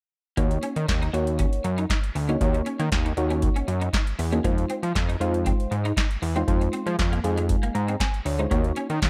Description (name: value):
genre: early-eighties boogie funk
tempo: 118 BPM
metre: 4/4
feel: straight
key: Eb dorian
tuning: A4 = 440 Hz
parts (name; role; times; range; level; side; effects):
- mellow FM electric piano; accompaniment; 0.4-8.9 s; Ab3 to Bb5; -30 LUFS; equal; chorus, phaser
- electric guitar at the edge of break-up; riff; 0.4-9.1 s; Ab3 to Gb4; -36 LUFS; equal; ensemble chorus
- fat analog bass; bass; 0.4-9.1 s; D2 to F3; -28 LUFS; equal; none
- booming analog drum machine; drums; 0.4-9.1 s; handclaps, hi-hat, kick drum, snare drum; -27 LUFS; equal; gated reverb
room: digital ambience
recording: none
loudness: -25 LUFS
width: mono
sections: 0.4-9.1 A section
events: FM electric piano fill 7.5-8.5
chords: 0.4 Ebm7; 4.4 Fm7; 8.5 Ebm7